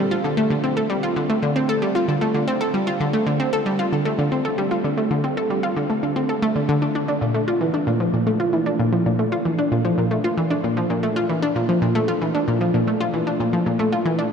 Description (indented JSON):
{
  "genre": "ambient",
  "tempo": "114 BPM",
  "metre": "4/4",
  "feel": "straight",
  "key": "unclear",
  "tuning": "A4 = 440 Hz",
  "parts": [
    { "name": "analog pluck", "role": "solo", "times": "0.0-14.3 s", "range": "Bb2 to A4", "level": "-19 LUFS", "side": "equal", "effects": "chorus, ping-pong delay" }
  ],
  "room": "wet huge ambient reverb, RT60 8.2 s",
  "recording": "dreamy mix soaked in reverb",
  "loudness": "-19 LUFS",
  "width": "side -6 dB against mid",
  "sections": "0.0-7.2 A section; 7.2-14.3 A section",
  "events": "none",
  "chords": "none",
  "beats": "0.37 | 0.90 1.43 1.95 2.48 | 3.00 3.53 4.06 4.58 | 5.11 5.64 6.16 6.69 | 7.21 7.74 8.27 8.79 | 9.32 9.85 10.37 10.90 | 11.43 11.95 12.48 13.00 | 13.53 14.06"
}